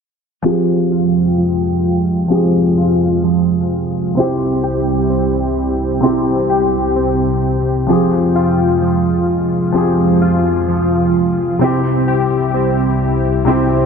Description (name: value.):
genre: hip hop.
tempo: 129 BPM.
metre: 4/4.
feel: half-time.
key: F harmonic minor.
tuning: A4 = 440 Hz.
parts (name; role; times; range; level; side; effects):
dark concert grand piano; accompaniment; 0.4-13.9 s; C3 to Ab4; -18 LUFS; left 4 dB; low-pass filter.
dark analog pad; sustained chords; 1.0-13.9 s; C2 to G5; -20 LUFS; equal; chorus, low-pass filter.
warbly lo-fi synth keys; arpeggios; 0.4-13.9 s; F3 to G4; -16 LUFS; right 2 dB; chorus, low-pass filter, tape echo.
room: moderate lush hall reverb, RT60 2.5 s.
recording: none.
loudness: -13 LUFS.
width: side -6 dB against mid.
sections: 0.4-13.9 A section.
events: filter sweep 0.4-13.9.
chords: 0.4 Fmadd9; 4.2 C; 7.9 Fmadd9; 11.6 C.